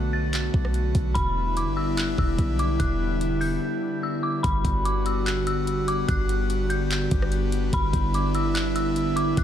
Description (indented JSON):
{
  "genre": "hip hop, atmospheric cloud-rap",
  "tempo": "146 BPM",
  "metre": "4/4",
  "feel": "half-time",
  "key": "G major",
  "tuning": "A4 = 440 Hz",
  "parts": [
    { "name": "dark detuned synth bell", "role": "melody", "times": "0.0-9.4 s", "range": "B5 to A6", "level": "-30 LUFS", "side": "left 1 dB", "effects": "chorus, low-pass filter, digital delay" },
    { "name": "airy breathy pad", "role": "sustained chords", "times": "0.0-9.4 s", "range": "D3 to F#4", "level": "-26 LUFS", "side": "equal", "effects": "chorus, sidechain pumping" },
    { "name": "warm 808-style bass", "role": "bass", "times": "0.0-9.4 s", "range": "E1 to B1", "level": "-26 LUFS", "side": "equal", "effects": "none" },
    { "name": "trap drum kit", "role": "drums", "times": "0.3-9.4 s", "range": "handclaps, hi-hat, kick drum, rim click", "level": "-28 LUFS", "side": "equal", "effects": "none" }
  ],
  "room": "light reverb",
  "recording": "none",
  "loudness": "-22 LUFS",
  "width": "side -10 dB against mid",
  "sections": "0.0-4.4 A section; 4.4-9.4 B section",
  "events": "break 3.6-4.4",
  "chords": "0.0 Bm7; 1.2 Em7; 4.4 Gmaj7"
}